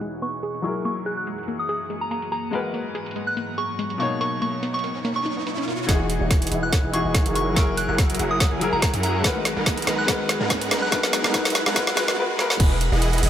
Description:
future bass; 143 BPM; 4/4; swing 54% on 16ths, half-time; B major; A4 = 440 Hz
soft synth bell; melody; 0.0-12.1 s; A#5 to F#6; -29 LUFS; equal; chorus, sidechain pumping, digital delay
bright grand piano; accompaniment; 0.0-12.6 s; B2 to C#5; -28 LUFS; left 3 dB; sidechain pumping, digital delay
ethereal airy pad; sustained chords; 0.0-12.2 s; E2 to A#5; -34 LUFS; right 2 dB; ensemble chorus, built-in reverb, sidechain pumping
wide unison pluck; arpeggios; 0.0-5.8 s; G#3 to A#4; -32 LUFS; left 1 dB; sidechain pumping, digital delay
trap drum kit; drums; 0.0-13.3 s; crash cymbal, hi-hat, snare drum; -25 LUFS; right 1 dB; high-pass filter on hats, low-pass filter on hats, small room ambience, high-pass filter on snare, low-pass filter on snare, high-pass filter on cymbals, low-pass filter on cymbals
riser; sound effects; 3.7-12.2 s; -33 LUFS; equal
supersaw chords; riff; 5.9-13.3 s; E3 to G#5; -26 LUFS; right 1 dB; sidechain pumping, low-pass filter
long sustained 808-style bass; bass; 5.9-13.3 s; E1 to G#2; -28 LUFS; equal; sidechain pumping
electronic kick drum; drums; 5.9-12.7 s; -21 LUFS; equal; small room ambience
light reverb; high-pass filter, low-pass filter; -20 LUFS; side -10 dB against mid
0.0-5.9 A section; 5.9-12.6 B section
filter sweep on synth arpeggio sound 0.0-5.9; filter sweep on ambient pad 0.0-5.9; filter sweep 0.0-5.9, 5.9-12.6; riser 3.7-5.9, 5.9-12.2; build-up 5.9-12.6; drum fill 5.9-12.2, 12.4; filter sweep on supersaw synth 5.9-12.6
0.0 Emaj9; 0.6 F#9; 2.5 G#m9; 4.0 Bmaj9; 5.9 Emaj9; 7.4 F#9; 9.2 G#m9; 10.7 Bmaj7; 12.6 Emaj9

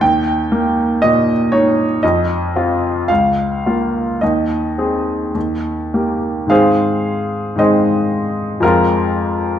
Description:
classical, romantic character piece for solo piano; 52-61 BPM; 2/4; rubato; Ab major; A4 = 440 Hz
clear baby grand piano; solo; 0.0-9.6 s; Db2 to G5; -14 LUFS; equal
moderate recital hall reverb, RT60 1.4 s; dark, warm production; -14 LUFS; side -10 dB against mid
0.0-6.5 A section; 6.5-9.6 B section
0.0 Eb; 2.0 F5; 3.1 Bbm/Db; 4.2 Ab/Eb; 5.4 Eb; 6.5 Ab; 8.6 Fm

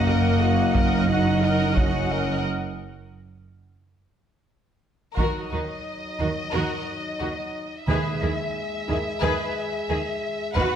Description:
cinematic, epic orchestral film score; 89 BPM; 4/4; straight; Eb phrygian; A4 = 440 Hz
dark symphonic violin section; melody; 0.0-10.8 s; Eb5 to Gb5; -31 LUFS; left 2 dB
warm symphonic violin section; second line; 0.0-10.8 s; Eb4 to Gb5; -31 LUFS; left 2 dB
rich symphonic viola section; accompaniment; 0.0-10.8 s; Gb4 to Bb4; -31 LUFS; right 1 dB
mellow French horn section; sustained chords; 0.0-10.8 s; Gb3 to G#4; -28 LUFS; left 4 dB
rich symphonic cello section; bass; 0.0-10.6 s; Gb2 to Eb3; -29 LUFS; right 4 dB
rich symphonic double bass section; bass; 0.0-10.6 s; Gb1 to Eb2; -28 LUFS; right 4 dB
taiko ensemble; drums; 0.8-6.5, 10.6-10.8 s; -27 LUFS; equal
timpani; percussion; 7.9-8.8 s; Eb3; -30 LUFS; right 2 dB
moderate scoring stage reverb, RT60 1.5 s; -22 LUFS; side -9 dB against mid
0.0-5.2 A section; 5.2-10.8 B section
break 2.4-5.2
0.0 Ebm/Gb; 2.4 N.C.; 5.2 Ebm; 7.9 E/Eb

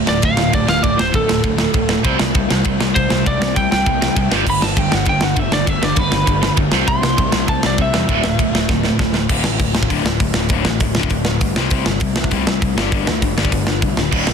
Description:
punk rock; 199 BPM; 4/4; straight; A4 = 440 Hz
distorted electric guitar; riff; 0.0-14.3 s; D2 to C4; -22 LUFS; left 12 dB; distortion
overdriven electric guitar; riff; 0.0-9.3, 14.1-14.3 s; D2 to C4; -21 LUFS; right 14 dB
fuzz picked electric bass; bass; 0.0-14.3 s; D1 to E2; -22 LUFS; equal; overdrive
lightly driven lead guitar; melody; 0.1-8.7 s; A4 to C6; -20 LUFS; right 1 dB
tight metal drum kit; drums; 0.1-14.3 s; crash cymbal, hi-hat, kick drum, ride cymbal, snare drum; -18 LUFS; equal
little or no reverb; dense, heavily limited modern master; -14 LUFS; side -6 dB against mid
0.0-9.3 A section; 9.3-14.3 B section
lead electric guitar solo 0.0-9.3; drum fill 8.7-9.3
0.0 D5; 2.0 C5; 4.3 G; 6.7 C5; 8.1 D5; 11.6 C5; 12.8 G5

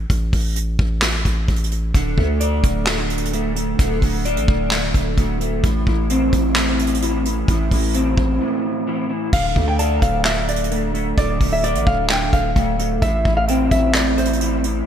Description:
hip hop, trap; 130 BPM; 4/4; half-time; D minor; A4 = 440 Hz
long sustained 808-style bass; bass; 0.0-14.8 s; D1 to D2; -22 LUFS; equal
soft brush drum kit; drums; 0.1-14.7 s; crash cymbal, handclaps, hi-hat, kick drum, snare drum; -20 LUFS; equal
electric guitar at the edge of break-up; accompaniment; 1.9-14.9 s; A2 to D5; -21 LUFS; equal; analog chorus, low-pass filter
nylon-string guitar; melody; 9.3-14.8 s; C5 to A5; -22 LUFS; equal; low-pass filter
moderate lush hall reverb, RT60 2.2 s; bright 1980s-style digital production; -16 LUFS; side -9 dB against mid
0.0-9.3 A section; 9.3-14.9 B section
break 0.0-1.9, 8.4-9.3
0.0 N.C.; 1.9 D5; 5.6 Am; 9.3 Dm; 13.0 Am

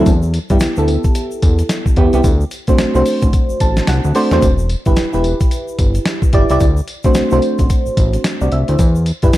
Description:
R&B, new jack swing; 110 BPM; 4/4; swing 60% on 16ths; E minor; A4 = 440 Hz
mellow FM electric piano; accompaniment; 0.0-9.4 s; A3 to A5; -17 LUFS; right 1 dB; chorus, tremolo
fat analog bass; bass; 0.0-9.4 s; E1 to G2; -16 LUFS; equal
dusty soul sampler-style drum kit; drums; 0.1-9.4 s; hi-hat, kick drum, snare drum, tambourine; -15 LUFS; equal
tube shaker; percussion; 0.1-9.4 s; -38 LUFS; left 6 dB
digital ambience; dark, warm production; -12 LUFS; side -15 dB against mid
0.0-9.4 A section
FM electric piano fill 3.3-4.4
0.1 Em; 2.2 D7; 4.4 Em; 6.6 D7; 8.8 Em

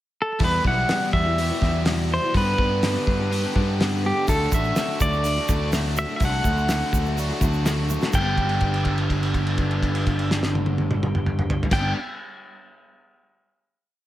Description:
folk rock and heartland rock; 124 BPM; 4/4; straight; G major; A4 = 440 Hz
pedal steel guitar; melody; 0.2-11.9 s; G4 to G5; -26 LUFS; equal; slapback echo, plate reverb
picked steel-string acoustic guitar; accompaniment; 0.4-12.0 s; E2 to G4; -31 LUFS; left 5 dB; plate reverb
biting overdriven guitar; riff; 0.4-11.9 s; E2 to G4; -28 LUFS; right 1 dB
picked electric bass; bass; 0.4-11.9 s; G1 to G2; -25 LUFS; equal
cloth-damped thuddy drum kit; drums; 0.4-11.8 s; crash cymbal, hi-hat, kick drum, snare drum, toms; -25 LUFS; equal
tube shaker; percussion; 4.3-8.4 s; -37 LUFS; right 7 dB
light reverb; -20 LUFS; side -14 dB against mid
0.0-0.4 pickup bar; 0.4-8.1 pre-chorus; 8.1-12.0 final chord
drum fill 7.9; held note 8.1-11.7
0.4 Emadd9; 2.3 G; 4.3 D; 8.1 G

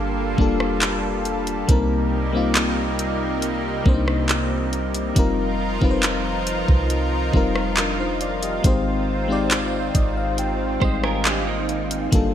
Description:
contemporary R&B; 69 BPM; 4/4; straight; A4 = 440 Hz
FM electric piano with soft pad layer; accompaniment; 0.0-12.3 s; G3 to Ab5; -24 LUFS; left 4 dB; chorus
lush unison pad; sustained chords; 0.0-12.3 s; C3 to Bb4; -26 LUFS; right 2 dB; chorus
soft 808-style bass; bass; 0.0-12.3 s; F1 to C2; -26 LUFS; right 1 dB
smooth R&B drum kit; drums; 0.4-12.3 s; handclaps, hi-hat, kick drum, rim click; -22 LUFS; right 1 dB; gated reverb
direct-recorded clean electric guitar; arpeggios; 10.8-12.1 s; Bb3 to C5; -27 LUFS; right 9 dB; ensemble chorus, ping-pong delay
light reverb, digital ambience; bright 1980s-style digital production; -19 LUFS; side -10 dB against mid
0.0-12.3 A section
FM electric piano fill 9.5-12.1
0.0 Gm9; 1.7 Cm7; 5.2 F9sus4; 8.6 Abmaj7

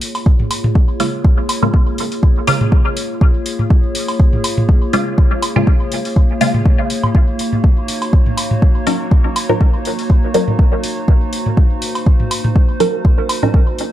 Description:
dub techno; 122 BPM; 4/4; swing 55% on 16ths; Bb minor; A4 = 436 Hz
warbly tape-like pad; sustained chords; 0.0-13.9 s; Bb3 to Db5; -23 LUFS; equal; chorus, built-in reverb, sidechain pumping
electronic hi-hat; drums; 0.0-13.9 s; -24 LUFS; left 2 dB
electronic woodblock and toms; percussion; 0.1-13.5 s; -21 LUFS; right 1 dB; sidechain pumping on toms, sidechain pumping on perc, dub echo
electronic kick drum; drums; 0.3-13.6 s; -11 LUFS; equal
filtered dub chord stab; stabs; 1.0-13.5 s; Db3 to Bb4; -19 LUFS; equal; phaser, sidechain pumping, dub echo
light reverb; dark, warm production; -12 LUFS; side -13 dB against mid
0.0-13.9 A section
filter sweep on synth stab 0.0-13.9
0.0 Bbm7; 7.1 Ebm7

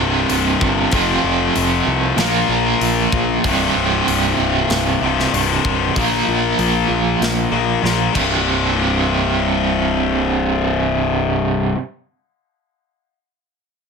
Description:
hard rock; 96 BPM; 4/4; straight; A4 = 440 Hz
overdriven electric guitar; riff; 0.0-11.8 s; C2 to Bb3; -18 LUFS; left 12 dB
overdriven electric guitar; riff; 0.0-11.8 s; C2 to Bb3; -19 LUFS; right 11 dB; tremolo
fuzz picked electric bass; bass; 0.0-11.7 s; C1 to C2; -22 LUFS; equal; overdrive
tight metal drum kit; drums; 0.3-8.3 s; crash cymbal, hi-hat, kick drum, snare drum; -25 LUFS; left 1 dB
light reverb; -15 LUFS; side -5 dB against mid
0.0-8.5 A section; 8.5-11.0 B section
drum fill 7.8-8.5
0.0 C5; 0.9 F5; 2.2 Bb5; 3.4 C5; 6.0 Bb5; 8.1 C5

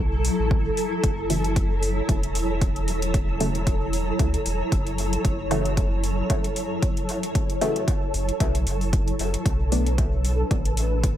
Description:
dub techno; 114 BPM; 4/4; swing 55% on 16ths; F# minor; A4 = 438 Hz
granular cloud pad; sustained chords; 0.0-11.2 s; F#3 to C#5; -28 LUFS; equal; built-in reverb, ensemble chorus, sidechain pumping
warm sub bass; bass; 0.0-11.2 s; E1 to C#2; -26 LUFS; equal; sidechain pumping
flickering grainy texture; texture; 0.0-11.2 s; A4; -33 LUFS; equal; built-in reverb, ensemble chorus, sidechain pumping
electronic hi-hat; drums; 0.2-11.2 s; -33 LUFS; left 2 dB; overdrive
electronic kick drum; drums; 0.5-11.2 s; -24 LUFS; equal; overdrive
filtered dub chord stab; stabs; 1.3-9.9 s; C#3 to D4; -29 LUFS; left 1 dB; chorus, phaser, sidechain pumping, dub echo
light reverb; -21 LUFS; side -11 dB against mid
0.0-11.2 A section
0.0 F#m7; 9.5 Bm7

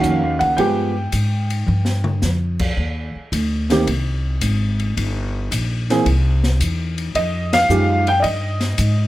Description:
jazz piano trio; 110 BPM; 4/4; swing 69% on 8ths; A4 = 441 Hz
dark upright piano; melody; 0.0-9.1 s; Eb3 to G5; -18 LUFS; right 1 dB
upright bass; bass; 0.0-9.1 s; G1 to Ab2; -19 LUFS; equal
open jazz drum kit; drums; 0.0-9.0 s; crash cymbal, hi-hat, kick drum, ride cymbal, snare drum, toms; -26 LUFS; left 2 dB
light reverb; -17 LUFS; side -15 dB against mid
0.0-9.1 A section
drum fill 1.7-2.2; band accent 7.4
0.0 Gb6; 0.6 G7(no3); 2.8 Cm; 5.0 Gm; 6.1 C; 7.2 Fm9

